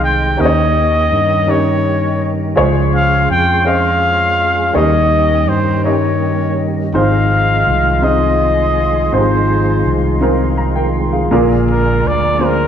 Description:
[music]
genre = slow gospel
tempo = 55 BPM (dotted quarters)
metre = 6/8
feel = straight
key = unclear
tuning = A4 = 441 Hz
[part]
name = breathy trumpet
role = melody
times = 0.0-12.7 s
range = Bb4 to G5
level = -16 LUFS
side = left 1 dB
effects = none
[part]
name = warm upright piano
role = accompaniment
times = 0.0-12.7 s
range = Ab2 to Bb5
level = -18 LUFS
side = left 1 dB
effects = none
[part]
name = breathy small flute group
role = sustained chords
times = 0.0-12.7 s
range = Ab4 to C6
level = -27 LUFS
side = left 1 dB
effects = none
[part]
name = mellow tonewheel organ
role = sustained chords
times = 0.0-12.7 s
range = D3 to G5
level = -20 LUFS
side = right 2 dB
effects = chorus vibrato, slow rotary speaker
[part]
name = fingered electric bass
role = bass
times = 0.0-12.7 s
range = Ab1 to G2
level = -17 LUFS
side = equal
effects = none
[sound]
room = wet large studio reverb, RT60 1.2 s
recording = band playing live in one room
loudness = -11 LUFS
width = side -8 dB against mid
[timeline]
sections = 0.0-12.7 A section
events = none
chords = 0.4 Eb7; 2.6 Dbmaj7; 4.8 Eb7; 6.9 Ab6; 9.1 Fm7/Ab; 11.3 Bb7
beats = | 0.39 1.48 | 2.57 3.66 | 4.76 5.85 | 6.94 8.03 | 9.13 10.22 | 11.31 12.40

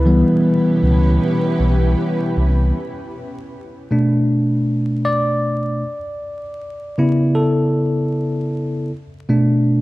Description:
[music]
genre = hip hop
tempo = 78 BPM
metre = 4/4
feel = swing 58% on 16ths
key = B minor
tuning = A4 = 440 Hz
[part]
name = bell-like tine electric piano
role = accompaniment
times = 0.0-9.8 s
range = B2 to D5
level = -16 LUFS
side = equal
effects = medium stereo tremolo, low-pass filter
[part]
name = granular cloud pad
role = sustained chords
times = 0.0-2.7 s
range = B2 to B4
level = -25 LUFS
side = right 1 dB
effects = built-in reverb, low-pass filter
[part]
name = sub bass with octave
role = bass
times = 0.0-2.7 s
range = B1 to C#2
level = -15 LUFS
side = equal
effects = none
[sound]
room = light reverb, digital ambience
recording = dark, warm production, vinyl crackle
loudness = -15 LUFS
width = side -18 dB against mid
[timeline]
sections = 0.0-2.7 A section; 2.7-9.8 B section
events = tine electric piano solo 0.0-2.7, 2.7-9.8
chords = 0.0 C#m7b5; 2.7 Bm7; 5.8 Bm11; 8.9 Bm7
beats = 0.44 1.21 1.98 | 2.75 3.52 4.29 5.05 | 5.82 6.59 7.36 8.13 | 8.90 9.67

